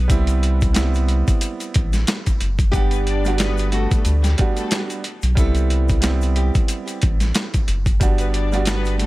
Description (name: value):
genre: hip hop, boom-bap hip-hop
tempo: 91 BPM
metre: 4/4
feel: swing 56% on 16ths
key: unclear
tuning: A4 = 441 Hz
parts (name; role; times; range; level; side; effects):
- round analog bass; bass; 0.0-9.1 s; F#1 to D2; -19 LUFS; equal; none
- warm upright piano; accompaniment; 0.1-9.1 s; G3 to F#5; -26 LUFS; right 5 dB; cassette tape, high-pass filter, low-pass filter
- boom bap sampler-style drum kit; drums; 0.1-9.1 s; hi-hat, kick drum, snare drum; -20 LUFS; equal; overdrive
- egg shaker; percussion; 0.1-9.0 s; none; -39 LUFS; left 11 dB; none
- nylon-string guitar; melody; 2.7-6.5 s; F#4 to A4; -30 LUFS; left 1 dB; high-pass filter, low-pass filter, tape echo
- muted symphonic string section; stabs; 2.9-9.1 s; G3 to D5; -30 LUFS; left 6 dB; high-pass filter, low-pass filter, tape echo
room: small room ambience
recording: none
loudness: -17 LUFS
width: side -18 dB against mid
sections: 0.0-9.1 A section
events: none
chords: 0.1 Cmaj7; 2.7 Gmaj7; 5.4 Cmaj7; 8.0 Gmaj7